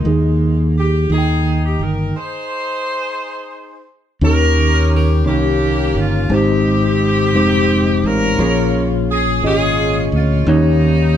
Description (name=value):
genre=slow gospel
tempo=58 BPM (dotted quarters)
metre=6/8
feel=straight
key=unclear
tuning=A4 = 440 Hz
part: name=warm saxophone section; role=melody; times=0.0-11.2 s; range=G3 to C5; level=-19 LUFS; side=right 1 dB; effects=none
part: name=mellow tine electric piano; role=accompaniment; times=0.0-11.2 s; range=Ab2 to G5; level=-17 LUFS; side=left 1 dB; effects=medium stereo tremolo
part: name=fingered electric bass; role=bass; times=0.0-11.2 s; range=F1 to Eb2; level=-17 LUFS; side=equal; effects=none
room=light reverb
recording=band playing live in one room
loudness=-13 LUFS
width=side -10 dB against mid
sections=0.0-4.2 A section; 4.2-11.2 B section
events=stop 2.1-4.2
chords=0.1 Ebsus4; 1.1 Eb; 2.1 Ab; 4.2 Eb7; 6.3 Abmaj7; 8.4 Bbm7; 10.5 Eb7